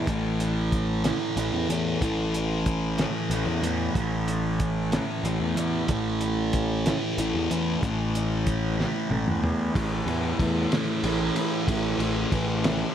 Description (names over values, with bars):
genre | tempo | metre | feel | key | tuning
psychedelic rock | 62 BPM (dotted quarters) | 6/8 | straight | unclear | A4 = 440 Hz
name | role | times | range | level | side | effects
thick fuzz guitar | riff | 0.0-12.9 s | A2 to A3 | -27 LUFS | equal | distortion, phaser
fuzz picked electric bass | bass | 0.1-12.8 s | A1 to E2 | -28 LUFS | equal | overdrive
cloth-damped thuddy drum kit | drums | 0.1-12.8 s | hi-hat, kick drum, ride cymbal, snare drum, toms | -29 LUFS | equal | none
room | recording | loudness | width
little or no reverb | none | -23 LUFS | side -9 dB against mid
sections
0.0-9.8 A section; 9.8-12.9 B section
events
drum fill 8.8-9.8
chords
0.0 A5